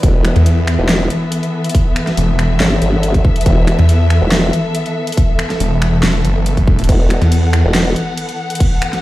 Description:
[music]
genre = heavy wobble dubstep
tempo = 140 BPM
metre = 4/4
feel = half-time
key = unclear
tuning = A4 = 443 Hz
[part]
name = warm studio string section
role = sustained chords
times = 0.0-9.0 s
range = E3 to F#5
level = -19 LUFS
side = left 1 dB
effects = sidechain pumping
[part]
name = formant-sweep wobble bass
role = bass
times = 0.0-7.9 s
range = E1 to G1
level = -16 LUFS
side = equal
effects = chorus, overdrive
[part]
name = dubstep drum kit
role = drums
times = 0.0-9.0 s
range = crash cymbal, finger snaps, handclaps, hi-hat, snare drum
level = -20 LUFS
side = equal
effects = studio reverb
[part]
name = electronic kick drum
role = drums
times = 0.0-8.7 s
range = none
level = -13 LUFS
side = equal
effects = overdrive, studio reverb
[part]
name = snarling distorted saw bass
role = bass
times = 0.4-7.6 s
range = E1 to E2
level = -12 LUFS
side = equal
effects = distortion, overdrive
[sound]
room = little or no reverb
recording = played on a big sound system in a bare room, large studio reverb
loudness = -12 LUFS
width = side -16 dB against mid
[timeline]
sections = 0.0-9.0 A section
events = none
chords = 0.0 E5

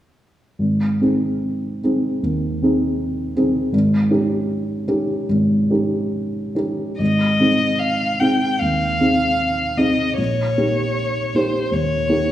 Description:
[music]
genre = classical, romantic duo for violin and grand piano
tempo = 75 BPM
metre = 4/4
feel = uneven beats, rubato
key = Ab major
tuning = A4 = 440 Hz
[part]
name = dark baby grand piano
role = accompaniment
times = 0.6-12.3 s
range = Ab1 to Ab4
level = -18 LUFS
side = equal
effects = none
[part]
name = rich violin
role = melody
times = 7.0-12.3 s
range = C5 to G5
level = -20 LUFS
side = left 2 dB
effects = none
[sound]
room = moderate scoring stage reverb, RT60 1.6 s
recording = small room ambience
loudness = -17 LUFS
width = side -12 dB against mid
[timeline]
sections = 0.6-7.0 A section; 7.0-12.3 B section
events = none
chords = 0.6 Ab; 3.7 Eb7/Ab; 7.0 Ab; 10.2 Eb7/Bb

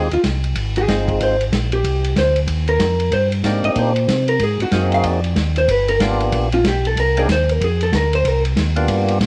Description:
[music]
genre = soul jazz organ trio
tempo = 187 BPM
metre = 4/4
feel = swing 62% on 8ths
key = C minor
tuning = A4 = 440 Hz
[part]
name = percussive tonewheel organ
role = melody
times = 0.0-1.4, 3.4-9.2 s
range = Ab3 to Ab4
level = -24 LUFS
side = equal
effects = slow rotary speaker
[part]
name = vintage hollow-body jazz guitar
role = accompaniment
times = 0.0-8.4 s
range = F4 to F5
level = -21 LUFS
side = equal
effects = cassette tape
[part]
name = mellow tonewheel organ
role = bass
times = 0.0-9.3 s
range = G1 to C3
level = -22 LUFS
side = equal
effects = chorus vibrato, slow rotary speaker
[part]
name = vintage drum kit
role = drums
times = 0.1-9.3 s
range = hi-hat, kick drum, ride cymbal, snare drum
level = -26 LUFS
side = equal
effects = cassette tape
[sound]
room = light reverb, small room ambience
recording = home recording on cassette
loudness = -18 LUFS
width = mono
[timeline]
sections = 0.0-9.3 A section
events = hollow-body jazz guitar solo 0.0-9.3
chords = 0.0 Fm7; 1.8 Cm7; 4.4 Ab7; 5.7 G7#9; 7.0 Cm7; 7.6 Dm7b5; 8.2 Cm7

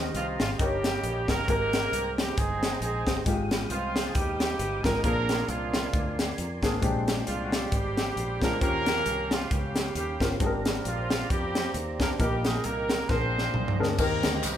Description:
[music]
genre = uptempo gospel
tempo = 134 BPM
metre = 4/4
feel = swing 57% on 8ths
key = Eb major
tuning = A4 = 440 Hz
[part]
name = warm baby grand piano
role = accompaniment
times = 0.0-14.6 s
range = G2 to Eb5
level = -31 LUFS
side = left 2 dB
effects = none
[part]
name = tonewheel organ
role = sustained chords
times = 0.0-14.6 s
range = Ab3 to Eb6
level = -38 LUFS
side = right 3 dB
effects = slow rotary speaker, chorus vibrato
[part]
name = fingered electric bass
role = bass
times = 0.0-14.6 s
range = G1 to F2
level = -34 LUFS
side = equal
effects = none
[part]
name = clear horn section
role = melody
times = 0.1-14.6 s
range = F3 to C5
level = -35 LUFS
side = left 1 dB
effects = none
[part]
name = crisp fusion drum kit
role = drums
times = 0.1-14.6 s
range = crash cymbal, hi-hat, kick drum, snare drum, toms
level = -28 LUFS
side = equal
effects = none
[part]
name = warm trumpet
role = melody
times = 0.2-13.8 s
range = F4 to C5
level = -32 LUFS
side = right 3 dB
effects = none
[part]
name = tambourine and handclaps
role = percussion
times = 14.0-14.6 s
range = none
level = -35 LUFS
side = equal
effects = none
[sound]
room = moderate large studio reverb, RT60 1.1 s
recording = band playing live in one room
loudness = -25 LUFS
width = side -10 dB against mid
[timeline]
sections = 0.0-14.0 A section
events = drum fill 13.1-14.0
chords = 0.0 Eb6; 0.6 Eb7/G; 1.5 Abmaj9; 3.3 Fm9/Ab; 5.0 Bb9; 6.8 Bb13; 8.6 Eb13; 10.4 Abmaj9#11; 12.2 Eb/Bb; 13.1 Bb9; 14.0 Eb6

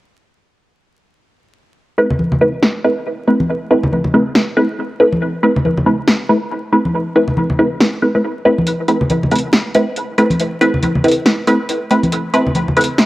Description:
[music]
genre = deep dubstep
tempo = 139 BPM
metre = 4/4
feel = swing 59% on 16ths, half-time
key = A minor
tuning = A4 = 435 Hz
[part]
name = filtered dub chord stab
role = stabs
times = 2.0-12.9 s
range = A3 to B4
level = -14 LUFS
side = equal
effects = phaser, cassette tape, dub echo
[part]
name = congas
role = percussion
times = 2.1-12.8 s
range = none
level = -18 LUFS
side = equal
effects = none
[part]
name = deep house drum kit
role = drums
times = 2.6-13.1 s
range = hi-hat, snare drum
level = -15 LUFS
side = equal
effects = overdrive, low-pass filter on snare, small room ambience, cassette tape, low-pass filter on hats
[sound]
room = moderate lush hall reverb, RT60 1.7 s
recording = home recording on cassette, vinyl crackle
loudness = -13 LUFS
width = side -17 dB against mid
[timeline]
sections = 1.8-13.1 A section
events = filter sweep on drum 1.8-13.1; filter sweep on synth stab 1.8-13.1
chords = 1.8 Amadd9

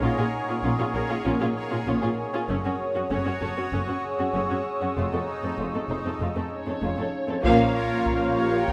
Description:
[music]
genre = cinematic, suspense film score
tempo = 97 BPM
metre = 4/4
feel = straight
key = unclear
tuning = A4 = 441 Hz
[part]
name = warm studio violin section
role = melody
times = 0.0-8.7 s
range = Db4 to G5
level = -34 LUFS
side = equal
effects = none
[part]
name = warm studio viola section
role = accompaniment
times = 0.0-8.7 s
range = F3 to Ab4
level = -33 LUFS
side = equal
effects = none
[part]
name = bubbling stepped-filter texture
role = sustained chords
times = 0.0-8.7 s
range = Eb4 to Db5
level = -33 LUFS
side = equal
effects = chorus, built-in reverb
[part]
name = clear studio double bass section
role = bass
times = 0.0-8.7 s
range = F1 to Bb1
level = -34 LUFS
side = equal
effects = none
[part]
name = rich studio cello section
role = bass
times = 0.0-8.7 s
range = F2 to Bb2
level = -34 LUFS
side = equal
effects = none
[part]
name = vibraphone with medium mallets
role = texture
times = 0.0-8.7 s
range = G4 to Ab5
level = -39 LUFS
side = equal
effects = none
[part]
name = rich studio violin section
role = texture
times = 2.5-8.7 s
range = Db6 to Bb6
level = -42 LUFS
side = equal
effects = none
[part]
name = mellow French horn section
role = sustained chords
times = 6.5-8.7 s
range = Db4 to G4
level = -30 LUFS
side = equal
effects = none
[part]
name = clear studio violin section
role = second line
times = 7.4-8.7 s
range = Bb3 to Db4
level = -30 LUFS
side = equal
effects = none
[part]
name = solo taiko drums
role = drums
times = 7.4-8.7 s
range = none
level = -33 LUFS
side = equal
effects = none
[sound]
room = moderate concert hall reverb, RT60 1.9 s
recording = none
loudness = -26 LUFS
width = mono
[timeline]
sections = 0.0-7.4 A section; 7.4-8.7 B section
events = band accent 7.4-8.1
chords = 0.0 Bbm7; 2.5 Gb5; 5.0 F7; 7.4 Bbm

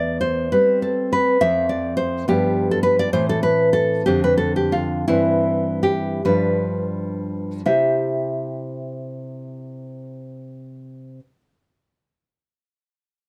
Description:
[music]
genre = romantic piece for solo classical guitar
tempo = 38-69 BPM (dotted quarters)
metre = 6/8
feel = rubato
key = C major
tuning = A4 = 441 Hz
[part]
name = nylon-string guitar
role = solo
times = 0.0-11.2 s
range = E2 to E5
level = -21 LUFS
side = equal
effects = none
[sound]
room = little or no reverb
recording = close, detailed microphones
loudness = -20 LUFS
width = mono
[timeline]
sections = 0.0-7.7 A section; 7.7-13.1 B section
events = slowing down 2.3-7.7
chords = 0.0 C/E; 1.4 Dm9/F; 2.3 G7; 3.1 Am; 4.1 Dm7/F; 5.1 C/G; 6.3 G7; 7.7 C

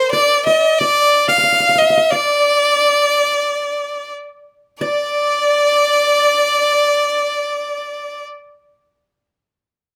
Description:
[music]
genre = arabic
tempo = 90 BPM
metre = 4/4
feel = straight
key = D maqam saba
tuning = A4 = 440 Hz
[part]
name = clear violin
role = melody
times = 0.0-8.2 s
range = C5 to F5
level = -16 LUFS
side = equal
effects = plate reverb
[part]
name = clear studio violin section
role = second line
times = 0.0-8.2 s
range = C5 to F5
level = -23 LUFS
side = equal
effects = none
[part]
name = qanun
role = second line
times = 0.0-8.3 s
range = Bb4 to F5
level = -27 LUFS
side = equal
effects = none
[sound]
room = moderate studio reverb, RT60 0.5 s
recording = none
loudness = -15 LUFS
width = mono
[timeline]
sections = 0.0-4.8 A section; 4.8-7.5 B section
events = none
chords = none

